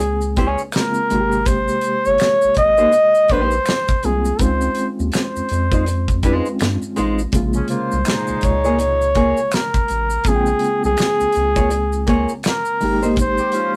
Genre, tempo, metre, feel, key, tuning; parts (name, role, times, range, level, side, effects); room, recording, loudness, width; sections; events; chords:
R&B, neo-soul; 82 BPM; 4/4; swing 60% on 16ths; A4 = 440 Hz
warm flugelhorn; melody; 0.0-13.7 s; Ab4 to Eb5; -20 LUFS; equal
nylon-string guitar; second line; 0.0-13.2 s; Ab3 to Db5; -22 LUFS; equal
bright reed electric piano; accompaniment; 0.0-13.8 s; C3 to G5; -27 LUFS; equal; fast tremolo
round analog bass; bass; 0.0-13.4 s; G1 to G2; -25 LUFS; equal
damped 70s drum kit; drums; 0.0-13.7 s; hi-hat, kick drum, snare drum; -23 LUFS; equal
maracas and finger snaps; percussion; 0.0-13.7 s; -35 LUFS; equal
mellow horn section; stabs; 7.5-13.8 s; Bb2 to Ab4; -29 LUFS; equal
light reverb; rough rehearsal-room recording; -18 LUFS; mono
0.0-13.8 A section
0.0 Bbm7; 1.1 Abmaj9; 4.4 Dbmaj9; 7.3 Bbm7; 12.8 Abmaj9